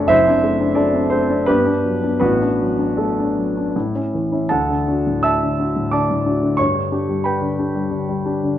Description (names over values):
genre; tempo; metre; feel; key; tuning
classical, romantic character piece for solo piano; 76-91 BPM; 3/4; rubato; D major; A4 = 436 Hz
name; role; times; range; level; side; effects
warm grand piano; solo; 0.0-8.6 s; F#1 to E6; -16 LUFS; equal; none
room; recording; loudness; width
moderate recital hall reverb, RT60 1.4 s; dark, warm production; -16 LUFS; side -11 dB against mid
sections
0.0-4.5 A section; 4.5-8.6 B section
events
none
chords
0.1 D7/F#; 1.5 Gmaj7; 2.2 D/A; 3.8 A; 4.5 D; 6.6 G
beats
| 0.10 0.78 1.48 | 2.23 3.00 3.76 | 4.50 5.26 5.93 | 6.60 7.27 7.93